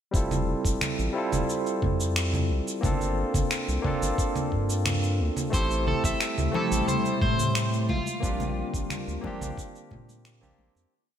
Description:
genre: sunset chillout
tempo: 89 BPM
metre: 4/4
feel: straight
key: F major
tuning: A4 = 440 Hz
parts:
  - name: barky tine electric piano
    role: accompaniment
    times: 0.1-10.9 s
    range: G3 to A4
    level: -30 LUFS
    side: equal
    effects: auto-pan, vintage 12-bit sampler grit, low-pass filter, ping-pong delay
  - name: round analog bass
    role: bass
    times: 0.1-10.9 s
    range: F1 to Bb2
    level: -28 LUFS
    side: equal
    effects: tube saturation
  - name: electronic kick drum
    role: drums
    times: 0.1-10.1 s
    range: none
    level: -29 LUFS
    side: equal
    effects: none
  - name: electronic shaker, congas and finger snaps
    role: drums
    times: 0.1-10.9 s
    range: none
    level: -31 LUFS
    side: right 2 dB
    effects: none
  - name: electric guitar at the edge of break-up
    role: melody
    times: 5.5-10.6 s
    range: F4 to E5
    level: -31 LUFS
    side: equal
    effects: warbly pitch drift, ping-pong delay
  - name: ethereal airy pad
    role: sustained chords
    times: 6.2-10.9 s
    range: C3 to Bb3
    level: -33 LUFS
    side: left 1 dB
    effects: ensemble chorus, built-in reverb
  - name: congas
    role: percussion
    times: 6.5-10.9 s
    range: none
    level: -36 LUFS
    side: left 3 dB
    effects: none
room: moderate lush hall reverb, RT60 2.0 s, digital ambience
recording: bright 1980s-style digital production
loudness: -24 LUFS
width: side -9 dB against mid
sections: 0.1-10.9 groove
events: fade-out 7.3-10.9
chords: 0.1 Fmaj9; 2.8 Gm11; 5.5 Am7; 7.9 Bb69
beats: | 0.14 0.81 1.49 2.16 | 2.83 3.51 4.18 4.86 | 5.53 6.21 6.88 7.55 | 8.23 8.90 9.58 10.25

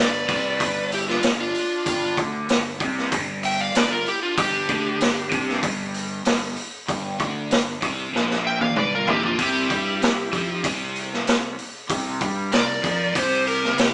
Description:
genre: blues rock power trio and southern rock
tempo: 96 BPM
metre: 4/4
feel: straight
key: unclear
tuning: A4 = 440 Hz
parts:
  - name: overdriven slide guitar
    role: melody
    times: 0.0-13.9 s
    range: F4 to G5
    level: -26 LUFS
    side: equal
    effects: none
  - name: bluesy overdriven lead guitar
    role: second line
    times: 0.0-13.9 s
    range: D4 to E5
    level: -32 LUFS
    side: equal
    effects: distortion
  - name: crunchy overdriven guitar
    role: riff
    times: 0.0-13.9 s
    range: G2 to G3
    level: -30 LUFS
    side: equal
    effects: phaser
  - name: fuzz fingered electric bass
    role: bass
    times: 0.0-13.9 s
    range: G1 to G2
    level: -35 LUFS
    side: equal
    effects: overdrive
  - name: raw garage drum kit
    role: drums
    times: 0.3-13.9 s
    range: hi-hat, kick drum, snare drum, toms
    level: -26 LUFS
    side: equal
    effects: none
room: moderate large studio reverb, RT60 1.2 s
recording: band playing live in one room, small speaker sound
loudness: -23 LUFS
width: mono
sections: 0.0-13.9 A section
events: drum fill 8.1-9.4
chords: 0.0 G5; 9.4 C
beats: 0.60 1.23 | 1.86 2.49 3.12 3.75 | 4.37 5.00 5.63 6.26 | 6.88 7.51 8.14 8.77 | 9.39 10.02 10.65 11.27 | 11.90 12.53 13.15 13.78

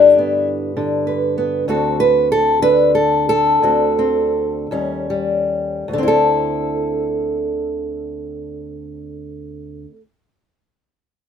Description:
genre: acoustic country blues, solo or duo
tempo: 48-67 BPM (dotted quarters)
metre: 12/8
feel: straight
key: D mixolydian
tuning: A4 = 440 Hz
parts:
  - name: fingerpicked old ladder-braced acoustic guitar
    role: solo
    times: 0.0-10.0 s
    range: D2 to B4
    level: -15 LUFS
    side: left 1 dB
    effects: none
room: little or no reverb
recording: close, detailed microphones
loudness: -15 LUFS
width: side -8 dB against mid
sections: 0.0-5.9 A section; 5.9-10.9 B section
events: slowing down 0.5-5.9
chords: 0.0 G; 1.7 D7; 4.7 Eb7; 5.9 Dsus2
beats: 0.77 | 1.68 2.62 3.62 4.70 | 5.88 7.12 8.37 9.61

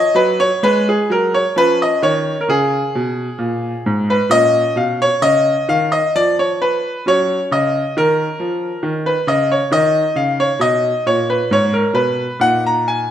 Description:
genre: classical, baroque-style suite movement for grand piano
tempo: 66 BPM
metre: 3/4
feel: rubato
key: F# major, Eb minor from 9.7 s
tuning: A4 = 441 Hz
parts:
  - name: bright baby grand piano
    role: solo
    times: 0.0-13.1 s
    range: G#2 to Bb5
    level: -14 LUFS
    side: equal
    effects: none
room: moderate recital hall reverb, RT60 1.4 s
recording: none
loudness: -14 LUFS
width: side -10 dB against mid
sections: 0.0-13.1 A section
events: none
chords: 0.0 D#m7; 0.6 F#add9; 1.5 C#7(no3); 4.3 A#madd11; 6.1 N.C.; 7.0 F# (rootless); 9.7 Eb5; 11.5 Abm; 12.4 Ebm/Bb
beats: 0.59 | 1.53 2.45 3.37 | 4.29 5.20 6.10 | 7.01 7.91 8.80 | 9.69 10.58 11.47 | 12.38

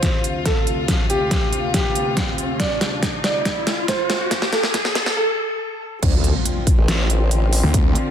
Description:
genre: heavy wobble dubstep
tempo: 140 BPM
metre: 4/4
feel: half-time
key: D minor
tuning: A4 = 443 Hz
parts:
  - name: warm grand piano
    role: melody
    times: 0.0-5.9 s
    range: G4 to D5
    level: -24 LUFS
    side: right 1 dB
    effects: ping-pong delay
  - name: warm chamber string section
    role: sustained chords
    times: 0.0-8.1 s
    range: D2 to F4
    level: -28 LUFS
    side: left 2 dB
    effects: sidechain pumping
  - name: dubstep drum kit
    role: drums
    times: 0.0-8.0 s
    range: crash cymbal, hi-hat, snare drum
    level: -23 LUFS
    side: equal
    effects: none
  - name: electronic kick drum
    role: drums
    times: 0.0-7.8 s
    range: none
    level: -21 LUFS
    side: equal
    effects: none
  - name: riser and impact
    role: sound effects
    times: 0.7-7.7 s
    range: none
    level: -26 LUFS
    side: equal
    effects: none
  - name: formant-sweep wobble bass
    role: bass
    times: 6.0-7.6 s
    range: A1 to D2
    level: -18 LUFS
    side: equal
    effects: chorus, overdrive
  - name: snarling distorted saw bass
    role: bass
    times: 7.6-7.9 s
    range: D2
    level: -18 LUFS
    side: equal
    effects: distortion, overdrive
room: light reverb, digital ambience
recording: dense, heavily limited modern master, high-pass filter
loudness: -17 LUFS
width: side -9 dB against mid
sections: 0.0-6.0 A section; 6.0-8.1 B section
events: build-up 0.0-6.0; drum fill 0.0-5.2; filter sweep 0.0-6.0; riser 0.7-5.2; break 5.2-6.0; drop 6.0-8.1; impact 6.0-7.7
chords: 0.0 Dm7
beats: 0.03 0.46 | 0.88 1.31 1.74 2.17 | 2.60 3.03 3.46 3.88 | 4.31 4.74 5.17 5.60 | 6.03 6.46 6.88 7.31 | 7.74

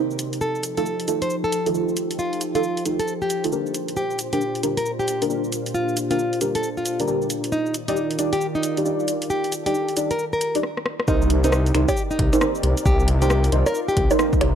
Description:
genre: UK garage, two-step garage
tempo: 135 BPM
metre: 4/4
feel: swing 63% on 16ths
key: C dorian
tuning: A4 = 440 Hz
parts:
  - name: soft string machine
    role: sustained chords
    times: 0.0-14.6 s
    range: Bb2 to D5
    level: -30 LUFS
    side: left 1 dB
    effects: ensemble chorus, sidechain pumping
  - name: deep mellow chord stab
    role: stabs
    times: 0.0-14.6 s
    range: D4 to D5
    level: -25 LUFS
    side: right 2 dB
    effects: chorus, phaser, tape echo
  - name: punchy analog drum machine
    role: drums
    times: 0.1-14.5 s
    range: bongos, cabasa, finger snaps, hi-hat, rim click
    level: -28 LUFS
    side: equal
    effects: overdrive, small room reverb
  - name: nylon-string guitar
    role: melody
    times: 0.4-14.1 s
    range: Eb4 to C5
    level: -25 LUFS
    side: equal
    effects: tape echo
  - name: dark detuned saw bass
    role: bass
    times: 11.1-14.5 s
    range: C2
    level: -20 LUFS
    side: equal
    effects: tube saturation
  - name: electronic kick drum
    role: drums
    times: 11.1-14.4 s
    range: none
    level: -22 LUFS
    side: equal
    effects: overdrive, small room reverb
room: light reverb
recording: dry, gritty hardware recording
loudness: -20 LUFS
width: side -8 dB against mid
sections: 0.0-11.1 A section; 11.1-14.6 B section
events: filter sweep on string machine 0.0-11.1; break 10.6-11.1; drum fill 10.6-11.1; drop 11.1-14.6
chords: 0.4 F7; 3.7 Bb6; 7.5 Ebmaj7; 11.1 Cm7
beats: | 0.41 0.86 1.30 1.75 | 2.19 2.63 3.08 3.52 | 3.97 4.41 4.86 5.30 | 5.75 6.19 6.63 7.08 | 7.52 7.97 8.41 8.86 | 9.30 9.74 10.19 10.63 | 11.08 11.52 11.97 12.41 | 12.86 13.30 13.74 14.19

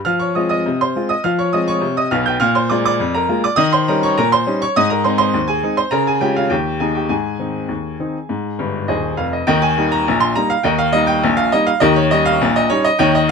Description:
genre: ragtime piano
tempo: 102 BPM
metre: 2/4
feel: straight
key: Ab major, Eb major from 9.5 s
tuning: A4 = 440 Hz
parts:
  - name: bright upright piano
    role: solo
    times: 0.0-13.3 s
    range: Eb1 to G6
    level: -14 LUFS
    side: equal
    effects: none
room: light reverb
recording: close, detailed microphones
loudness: -14 LUFS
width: side -5 dB against mid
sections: 0.0-9.5 A section; 9.5-13.3 B section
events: upright piano fill 8.6-9.5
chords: 0.1 Fm; 2.4 Bb7; 3.6 Eb7; 4.8 Ab; 5.9 Db; 6.5 Eb; 7.1 Ab; 9.5 Eb; 11.8 Eb7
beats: | 0.07 0.66 | 1.24 1.83 | 2.41 3.00 | 3.58 4.16 | 4.75 5.34 | 5.92 6.51 | 7.11 7.70 | 8.29 8.89 | 9.48 10.07 | 10.66 11.25 | 11.84 12.42 | 13.01

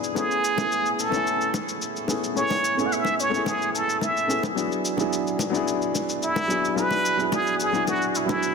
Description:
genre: sunset chillout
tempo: 109 BPM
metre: 4/4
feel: straight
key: unclear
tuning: A4 = 440 Hz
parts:
  - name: warm baby grand piano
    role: accompaniment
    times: 0.0-8.5 s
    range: F#3 to G#5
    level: -26 LUFS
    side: moving between left 5 dB and right 5 dB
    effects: auto-pan, ping-pong delay
  - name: cabasa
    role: drums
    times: 0.0-8.5 s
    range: none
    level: -33 LUFS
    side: left 3 dB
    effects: none
  - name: trumpet with plunger mute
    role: melody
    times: 0.2-8.5 s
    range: E4 to F#5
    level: -24 LUFS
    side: right 1 dB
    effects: ping-pong delay
  - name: bongos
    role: percussion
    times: 0.2-8.4 s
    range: none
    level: -33 LUFS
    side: left 2 dB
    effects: none
room: wet scoring stage reverb, RT60 2.0 s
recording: dense, heavily limited modern master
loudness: -22 LUFS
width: side -5 dB against mid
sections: 0.0-8.5 A section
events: none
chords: 0.2 Amaj7; 4.6 E7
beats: | 0.16 0.71 1.26 1.81 | 2.36 2.92 3.46 4.02 | 4.57 5.12 5.67 6.22 | 6.77 7.32 7.87 8.42

